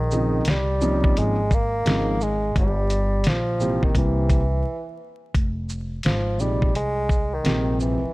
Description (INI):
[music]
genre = hip hop, jazz-hop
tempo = 86 BPM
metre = 4/4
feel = swing 65% on 16ths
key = F minor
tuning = A4 = 440 Hz
[part]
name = mellow bassoon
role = melody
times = 0.0-8.1 s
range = Eb3 to Bb3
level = -26 LUFS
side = equal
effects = none
[part]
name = upright bass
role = bass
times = 0.0-8.1 s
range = F1 to C2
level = -25 LUFS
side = equal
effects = none
[part]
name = dark baby grand piano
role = accompaniment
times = 0.1-8.0 s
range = C3 to Eb4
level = -25 LUFS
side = right 1 dB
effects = none
[part]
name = dusty soul sampler-style drum kit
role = drums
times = 0.1-8.0 s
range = hi-hat, kick drum, shaker, snare drum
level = -22 LUFS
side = equal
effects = none
[sound]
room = little or no reverb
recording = dark, warm production, vinyl crackle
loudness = -20 LUFS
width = side -21 dB against mid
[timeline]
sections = 0.0-5.3 A section; 5.3-8.1 B section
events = break 4.7-5.3; bassoon solo 5.3-8.1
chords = 0.0 Bbm11; 2.6 Gm7; 4.0 C7; 5.3 Fmadd9